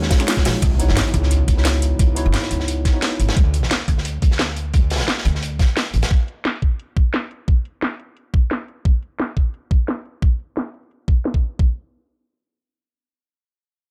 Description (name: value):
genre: liquid drum and bass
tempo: 175 BPM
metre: 4/4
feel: swing 53% on 16ths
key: unclear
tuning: A4 = 440 Hz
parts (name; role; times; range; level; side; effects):
- tine electric piano; accompaniment; 0.0-3.4 s; G#3 to C#5; -28 LUFS; equal; overdrive, subtle chorus, dub echo
- airy breathy pad; sustained chords; 0.0-0.6 s; none; barely audible; none; none
- thumb-piano-like synth pluck; arpeggios; 0.0-0.6 s; E#4 to F#4; -32 LUFS; equal; none
- upright bass; bass; 0.0-6.0 s; G#1 to D2; -22 LUFS; equal; none
- crunchy breakbeat drum kit; drums; 0.0-6.1 s; hi-hat, snare drum; -29 LUFS; equal; high-pass filter on hats, small room ambience, high-pass filter on snare, high-pass filter on room
- electronic kick drum; drums; 0.1-11.7 s; none; -18 LUFS; equal; small room ambience
- garage drum kit; drums; 0.1-11.5 s; hi-hat, ride cymbal, snare drum; -25 LUFS; equal; low-pass filter on hats, small room ambience, low-pass filter on cymbals, low-pass filter on snare
- impact; sound effects; 0.6-2.0 s; none; -28 LUFS; equal; none
room: small room ambience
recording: none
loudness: -20 LUFS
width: mono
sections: 0.6-11.6 A section; 11.6-13.9 B section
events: impact 0.6-2.0; filter sweep on drum 0.6-11.6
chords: 0.0 D#m11; 0.6 C#m11; 3.4 D5; 5.9 N.C.